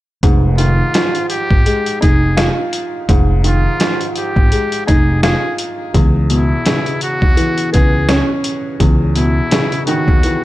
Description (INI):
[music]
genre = hip hop, boom-bap hip-hop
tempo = 84 BPM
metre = 4/4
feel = swing 56% on 16ths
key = unclear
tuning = A4 = 440 Hz
[part]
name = warm upright piano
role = accompaniment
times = 0.2-10.4 s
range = Fb2 to F4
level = -18 LUFS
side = equal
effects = high-pass filter, low-pass filter
[part]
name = upright bass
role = bass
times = 0.2-10.2 s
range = F1 to Eb2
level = -15 LUFS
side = equal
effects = none
[part]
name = trip hop sampler-style drum kit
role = drums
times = 0.2-10.4 s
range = hi-hat, kick drum, snare drum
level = -15 LUFS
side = equal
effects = none
[part]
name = trumpet with metal mute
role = melody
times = 0.6-10.4 s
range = Fb4 to Ab4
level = -21 LUFS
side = equal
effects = high-pass filter, low-pass filter, ping-pong delay
[sound]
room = small room reverb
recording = none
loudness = -12 LUFS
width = side -16 dB against mid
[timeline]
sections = 0.2-10.4 A section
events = none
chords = 0.2 Fm9; 5.9 Dbm9